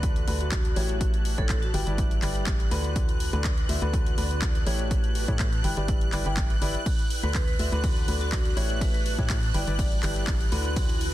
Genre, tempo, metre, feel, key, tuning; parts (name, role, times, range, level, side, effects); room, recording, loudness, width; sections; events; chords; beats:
piano house; 123 BPM; 4/4; straight; D major; A4 = 440 Hz
analog string pad; sustained chords; 0.0-11.1 s; F#6; -37 LUFS; right 2 dB; ensemble chorus, sidechain pumping
warm grand piano; riff; 0.0-11.1 s; D3 to G5; -33 LUFS; left 2 dB; sidechain pumping, dub echo
organ-like FM bass; bass; 0.0-11.1 s; G1 to A2; -29 LUFS; equal; sidechain pumping
electronic kick drum; drums; 0.0-10.9 s; -26 LUFS; equal
house drum kit; drums; 0.0-11.1 s; handclaps, hi-hat, ride cymbal; -34 LUFS; left 1 dB
sub drop; sound effects; 0.0-1.0 s; barely audible
granular cloud pad; texture; 0.0-11.1 s; E4 to A5; -40 LUFS; right 1 dB; built-in reverb, sidechain pumping
vibraphone with medium hard mallets; melody; 0.4-1.8, 7.2-9.9 s; F#4 to D5; -39 LUFS; moving between left 5 dB and right 6 dB; auto-pan, dub echo
digital ambience; dense, heavily limited modern master; -23 LUFS; side -14 dB against mid
0.0-11.1 A section
impact 0.0-1.0
0.0 D6; 1.0 A7; 1.7 G6; 3.0 D6; 4.9 A7; 5.6 G6; 6.9 D6; 8.8 A7; 9.5 G6
0.03 0.52 | 1.01 1.50 1.98 2.47 | 2.96 3.45 3.93 4.42 | 4.91 5.40 5.88 6.37 | 6.86 7.35 7.84 8.32 | 8.81 9.30 9.79 10.28 | 10.76